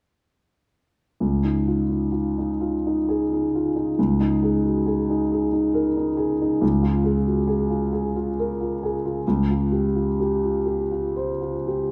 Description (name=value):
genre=classical, impressionist solo piano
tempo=67 BPM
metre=3/4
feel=uneven beats, rubato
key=Db major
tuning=A4 = 440 Hz
part: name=warm concert grand piano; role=solo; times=1.2-11.9 s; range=Db2 to C5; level=-23 LUFS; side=equal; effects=none
room=wet recital hall reverb, RT60 1.4 s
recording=none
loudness=-23 LUFS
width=mono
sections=1.2-11.9 A section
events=none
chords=1.2 Dbadd9; 4.0 Bbm7/Db; 6.6 Db6; 9.2 Dbmaj7#11